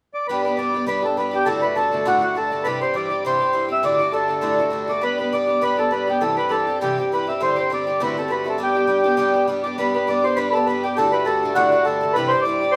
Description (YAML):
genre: celtic folk, Celtic reel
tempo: 202 BPM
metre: 4/4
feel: swing 55% on 8ths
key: G major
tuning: A4 = 438 Hz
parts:
  - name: mellow accordion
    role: melody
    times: 0.1-12.8 s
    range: F#4 to E5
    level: -22 LUFS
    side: equal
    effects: none
  - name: picked twelve-string acoustic guitar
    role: accompaniment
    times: 0.3-12.7 s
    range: D2 to G4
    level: -26 LUFS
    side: equal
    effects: none
  - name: pedal harmonium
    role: drone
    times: 0.3-12.8 s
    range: G2 to G3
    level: -31 LUFS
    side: equal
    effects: none
room: wet large studio reverb, RT60 1.0 s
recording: band playing live in one room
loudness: -20 LUFS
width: mono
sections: 0.3-9.8 A section; 9.8-12.8 A section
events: none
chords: 0.3 G; 1.5 D; 2.7 C; 3.8 D; 5.0 G; 6.2 C; 7.4 D7sus4; 8.0 D7; 8.6 G; 11.0 D; 12.2 C